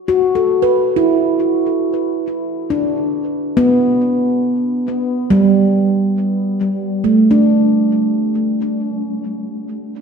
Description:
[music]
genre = ambient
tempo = 69 BPM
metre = 4/4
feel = straight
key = G major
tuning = A4 = 440 Hz
[part]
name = handpan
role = solo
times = 0.0-10.0 s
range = G3 to B4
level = -14 LUFS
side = right 1 dB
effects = ping-pong delay
[sound]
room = wet concert hall reverb, RT60 2.4 s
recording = none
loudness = -13 LUFS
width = side -6 dB against mid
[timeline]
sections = 0.0-10.0 A section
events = none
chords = 0.0 Gmaj7

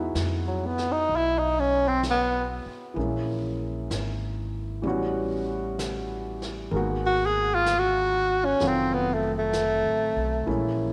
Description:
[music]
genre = jazz ballad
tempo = 64 BPM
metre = 4/4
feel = swing 67% on 8ths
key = unclear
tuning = A4 = 439 Hz
[part]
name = warm concert grand piano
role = accompaniment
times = 0.0-10.9 s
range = D#3 to F#4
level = -33 LUFS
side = equal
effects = none
[part]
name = upright bass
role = bass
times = 0.0-10.9 s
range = F1 to E#2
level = -34 LUFS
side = equal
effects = none
[part]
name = jazz brush drum kit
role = drums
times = 0.2-10.9 s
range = brushed snare drum, hi-hat, snare drum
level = -41 LUFS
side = equal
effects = none
[part]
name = warm tenor saxophone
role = melody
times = 0.5-10.7 s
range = F#3 to G#4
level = -26 LUFS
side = equal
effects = none
[sound]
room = moderate echo chamber reverb, RT60 2.1 s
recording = none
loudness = -26 LUFS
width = mono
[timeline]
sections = 0.0-10.9 A section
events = tenor saxophone solo 0.0-10.9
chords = 0.0 Emaj9; 3.0 A#m7b5; 4.8 A13; 6.7 G#m9; 8.6 F7b9

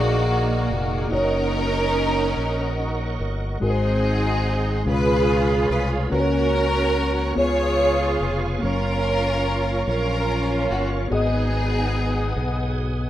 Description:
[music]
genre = slow gospel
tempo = 48 BPM (dotted quarters)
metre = 6/8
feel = straight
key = F# major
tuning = A4 = 442 Hz
[part]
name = clear studio string section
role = melody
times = 0.0-12.7 s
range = A#3 to C#5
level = -23 LUFS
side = right 1 dB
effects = plate reverb
[part]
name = mellow tine electric piano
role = accompaniment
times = 0.0-13.1 s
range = G#2 to E#5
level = -25 LUFS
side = left 2 dB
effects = phaser, plate reverb
[part]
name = bright tonewheel organ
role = sustained chords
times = 0.0-13.1 s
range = B3 to D#6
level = -30 LUFS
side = right 2 dB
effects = slow rotary speaker, overdrive, chorus vibrato, plate reverb
[part]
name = fingered electric bass with an envelope filter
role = bass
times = 0.0-13.1 s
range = E#1 to C#2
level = -25 LUFS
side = equal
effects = none
[sound]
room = wet studio reverb, RT60 0.6 s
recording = rough home demo mix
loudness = -19 LUFS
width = side -12 dB against mid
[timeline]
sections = 0.0-13.1 A section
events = none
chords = 0.0 A#7; 1.1 D#m7/F#; 3.6 G#7; 4.9 C#7; 6.1 F#/C#; 7.4 C#7; 8.6 F#maj7; 11.1 G#m7

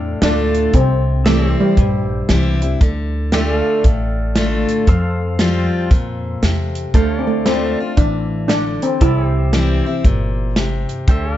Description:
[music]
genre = honky-tonk and classic country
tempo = 116 BPM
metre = 4/4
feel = swing 64% on 8ths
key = unclear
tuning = A4 = 441 Hz
[part]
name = steel pan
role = melody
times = 0.0-2.1, 6.9-9.5 s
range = G3 to E4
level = -20 LUFS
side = right 1 dB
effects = none
[part]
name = picked steel-string acoustic guitar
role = accompaniment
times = 0.0-11.4 s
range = F2 to F4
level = -20 LUFS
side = left 2 dB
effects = none
[part]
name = pedal steel guitar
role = sustained chords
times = 0.0-11.4 s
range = G4 to F5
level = -28 LUFS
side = right 1 dB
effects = none
[part]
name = upright bass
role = bass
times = 0.0-11.4 s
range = G1 to F2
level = -19 LUFS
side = equal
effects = none
[part]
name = natural country drum kit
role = drums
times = 0.2-11.2 s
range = hi-hat, kick drum, snare drum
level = -16 LUFS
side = equal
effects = none
[sound]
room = little or no reverb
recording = dark, warm production, nothing above 7.8 kHz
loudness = -14 LUFS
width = side -12 dB against mid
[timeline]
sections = 0.0-11.4 A section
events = none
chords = 0.0 Dm; 0.7 C; 2.8 Dm; 4.9 Fadd9; 6.9 Dm; 9.0 C

